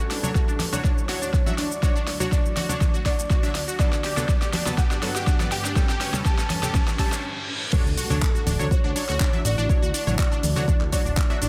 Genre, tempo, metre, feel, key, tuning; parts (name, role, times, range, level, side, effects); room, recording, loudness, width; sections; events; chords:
progressive house; 122 BPM; 4/4; straight; D major; A4 = 439 Hz
soft octave-layered synth lead; melody; 0.0-11.5 s; A4 to A5; -35 LUFS; equal; chorus, tremolo, digital delay
soft round pluck; second line; 0.0-11.5 s; A4 to A5; -42 LUFS; equal
shimmering ambient pad; sustained chords; 0.0-11.5 s; D2 to C#6; -39 LUFS; equal
unison pluck; arpeggios; 0.0-11.5 s; C#4 to G4; -34 LUFS; equal; phaser, vintage 12-bit sampler grit, sidechain pumping, digital delay
pop drum kit; drums; 0.0-11.5 s; crash cymbal, handclaps, hi-hat, shaker, snare drum; -33 LUFS; equal; overdrive, high-pass filter on snare, high-pass filter on hats, high-pass filter on perc, high-pass filter on cymbals, high-pass filter on room
riser, reverse cymbal and impact; sound effects; 1.0-9.7 s; -39 LUFS; equal
supersaw stab; stabs; 0.2-11.4 s; F#3 to E5; -35 LUFS; equal; sidechain pumping, digital delay
congas; percussion; 0.2-10.8 s; -34 LUFS; equal; sidechain pumping on perc
electronic kick drum; drums; 0.4-11.3 s; -24 LUFS; equal
fat analog bass; bass; 7.9-11.5 s; D1 to D2; -27 LUFS; equal; sidechain pumping
light reverb, digital ambience; -23 LUFS; mono
0.0-7.7 A section; 7.7-11.5 B section
build-up 0.0-7.7; drum fill 0.0-7.2; reverse cymbal 6.7-7.7; stop 7.2-7.7; drop 7.7-11.5; impact 7.7-9.7
0.0 Dmaj7; 3.8 Gmaj9; 5.8 A7; 7.7 Dmaj7